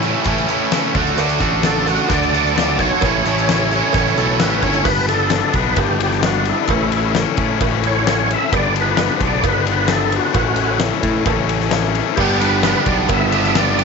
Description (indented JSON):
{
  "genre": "classic rock",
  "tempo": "131 BPM",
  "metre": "4/4",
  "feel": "straight",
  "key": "unclear",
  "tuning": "A4 = 440 Hz",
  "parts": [
    { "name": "tonewheel organ", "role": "sustained chords", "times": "0.0-13.8 s", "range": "E3 to B4", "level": "-30 LUFS", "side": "right 2 dB", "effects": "none" },
    { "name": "distorted electric guitar", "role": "riff", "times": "0.0-13.8 s", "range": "G2 to F#4", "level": "-21 LUFS", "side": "left 15 dB", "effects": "overdrive" },
    { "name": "overdriven semi-hollow guitar", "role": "riff", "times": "0.0-4.9, 12.2-13.8 s", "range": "A2 to G4", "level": "-20 LUFS", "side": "right 16 dB", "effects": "none" },
    { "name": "fuzz picked electric bass", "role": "bass", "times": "0.0-13.8 s", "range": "G1 to A2", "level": "-21 LUFS", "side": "right 1 dB", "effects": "overdrive" },
    { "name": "huge arena drum kit", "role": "drums", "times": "0.0-13.8 s", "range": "crash cymbal, hi-hat, kick drum, ride cymbal, snare drum", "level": "-21 LUFS", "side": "left 4 dB", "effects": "none" },
    { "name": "cowbell", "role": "percussion", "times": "1.2-13.7 s", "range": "none", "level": "-27 LUFS", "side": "right 16 dB", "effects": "none" },
    { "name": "overdriven tonewheel organ", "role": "melody", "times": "1.7-13.8 s", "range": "E4 to E5", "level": "-20 LUFS", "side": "right 1 dB", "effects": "slow rotary speaker, chorus vibrato, slapback echo" }
  ],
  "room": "light reverb, small room ambience",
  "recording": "1960s-style stereo with parts hard left and right, nothing above 7.8 kHz",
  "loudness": "-14 LUFS",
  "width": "side -5 dB against mid",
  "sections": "0.0-4.9 A section; 4.9-13.8 B section",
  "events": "none",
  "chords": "0.0 A; 1.0 D; 3.0 A; 4.9 G; 6.7 A; 8.5 G; 10.4 A; 12.2 G"
}